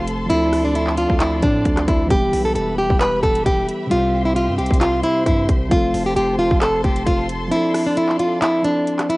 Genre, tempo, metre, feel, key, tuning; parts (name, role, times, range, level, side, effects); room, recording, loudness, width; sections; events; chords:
hip hop, trap; 133 BPM; 4/4; half-time; A4 = 438 Hz
nylon-string guitar; melody; 0.0-9.2 s; D4 to B4; -18 LUFS; equal; cassette tape
soft electric-piano-like synth keys; accompaniment; 0.0-9.2 s; C3 to A4; -24 LUFS; right 1 dB; chorus
dark symphonic string section; sustained chords; 0.0-9.2 s; G4 to C6; -30 LUFS; left 1 dB
distorted 808-style bass; bass; 0.0-7.5 s; E1 to A2; -25 LUFS; equal; distortion
trap drum kit; drums; 0.1-9.2 s; handclaps, hi-hat, kick drum, rim click; -20 LUFS; equal; cassette tape
light reverb; home recording on cassette, nothing above 10.7 kHz; -16 LUFS; side -22 dB against mid
0.0-9.2 A section
kick muted 7.5-9.2
0.3 Dm7; 2.1 Em; 3.9 C; 5.7 F; 7.5 Dm7